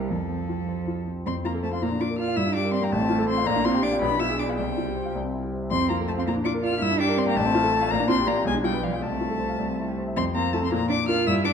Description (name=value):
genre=quick classical-period movement for piano trio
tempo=108 BPM (dotted quarters)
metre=6/8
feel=rubato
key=F major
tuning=A4 = 440 Hz
part: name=dark violin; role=melody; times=0.0-11.5 s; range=A4 to F6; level=-28 LUFS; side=left 7 dB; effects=none
part: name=rich cello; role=second line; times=0.0-11.5 s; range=F3 to F4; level=-28 LUFS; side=right 6 dB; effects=none
part: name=warm grand piano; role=accompaniment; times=0.0-11.5 s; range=A1 to G5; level=-25 LUFS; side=left 1 dB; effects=none
room=wet recital hall reverb, RT60 1.5 s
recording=dark, warm production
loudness=-22 LUFS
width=side -7 dB against mid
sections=0.0-1.3 A section; 1.3-10.2 B section; 10.2-11.5 B section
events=none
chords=0.1 F; 1.8 Bb; 2.4 Gm; 2.9 F/A; 3.5 Gm7/Bb; 4.0 Bdim7; 4.6 Csus4; 5.1 C; 5.7 F; 6.3 Bb; 6.8 Gm; 7.4 F/A; 7.9 Gm7/Bb; 8.5 Bdim; 9.0 F/C; 9.6 C; 10.2 F; 10.7 Bb